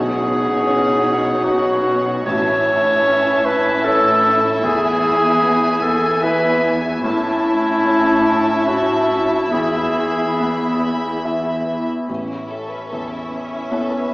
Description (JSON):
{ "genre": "cinematic, emotional film score for orchestra", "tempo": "74 BPM", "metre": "3/4", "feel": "rubato", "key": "unclear", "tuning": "A4 = 440 Hz", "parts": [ { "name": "clear clarinet", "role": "second line", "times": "0.0-11.2 s", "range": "E4 to C#5", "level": "-17 LUFS", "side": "equal", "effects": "none" }, { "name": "rich studio violin section", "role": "second line", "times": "0.0-14.1 s", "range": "C#4 to B5", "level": "-24 LUFS", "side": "equal", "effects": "none" }, { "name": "clear grand piano", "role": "accompaniment", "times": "0.0-14.1 s", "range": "A1 to E5", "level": "-24 LUFS", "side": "equal", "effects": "none" }, { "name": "warm studio viola section", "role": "accompaniment", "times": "0.0-14.1 s", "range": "B3 to E4", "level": "-24 LUFS", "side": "equal", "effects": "none" }, { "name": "rich studio cello section", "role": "bass", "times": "0.0-12.8 s", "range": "E2 to B2", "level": "-26 LUFS", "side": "right 1 dB", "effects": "none" }, { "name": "warm studio violin section", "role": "melody", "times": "12.1-14.1 s", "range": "E5", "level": "-32 LUFS", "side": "left 2 dB", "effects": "none" } ], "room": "wet concert hall reverb, RT60 2.4 s", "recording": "heard from further back in the room, small speaker sound", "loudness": "-15 LUFS", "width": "side -22 dB against mid", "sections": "0.0-12.1 A section; 12.1-14.1 B section", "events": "none", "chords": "0.0 Badd9; 2.3 A; 4.6 E; 7.0 A; 9.5 E; 12.1 Aadd9", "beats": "0.66 1.45 | 2.27 3.06 3.85 | 4.64 5.43 6.24 | 7.04 7.85 8.68 | 9.52 10.38 11.24 | 12.09 12.91 13.72" }